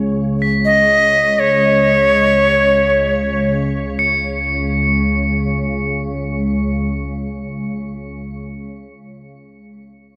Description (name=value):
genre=world meditative, free-time meditation music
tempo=free time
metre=none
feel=none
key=unclear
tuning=A4 = 440 Hz
part: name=soft additive organ-like pad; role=drone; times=0.0-8.4 s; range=C#2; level=-22 LUFS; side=equal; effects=ensemble chorus, built-in reverb
part: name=crotales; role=texture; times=0.4-8.4 s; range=B6 to C#7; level=-26 LUFS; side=equal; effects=shimmer reverb
part: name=bright reedy Native American-style cedar flute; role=melody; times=0.7-3.5 s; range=C#5 to D#5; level=-16 LUFS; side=equal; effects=shimmer reverb, tape echo
room=wet huge ambient reverb, RT60 5.0 s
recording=none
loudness=-16 LUFS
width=mono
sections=0.0-4.0 A section; 4.0-7.8 B section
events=none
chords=none